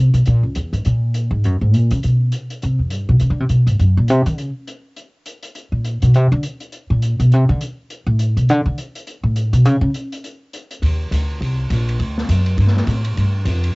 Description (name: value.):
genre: jazz, small-group swing and bop.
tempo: 205 BPM.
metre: 4/4.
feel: swing 60% on 8ths.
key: unclear.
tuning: A4 = 440 Hz.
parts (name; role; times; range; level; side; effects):
upright bass; bass; 0.0-13.7 s; Bb1 to D#3; -14 LUFS; equal; transformer saturation.
open jazz drum kit; drums; 0.1-13.7 s; hi-hat, kick drum, ride cymbal, snare drum; -29 LUFS; equal; cassette tape.
room: little or no reverb.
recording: home recording on cassette, nothing above 7.8 kHz.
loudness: -15 LUFS.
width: side -32 dB against mid.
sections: 0.0-1.4 A section; 1.4-10.8 A section; 10.8-13.8 B section.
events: upright bass solo 0.0-10.8.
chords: none.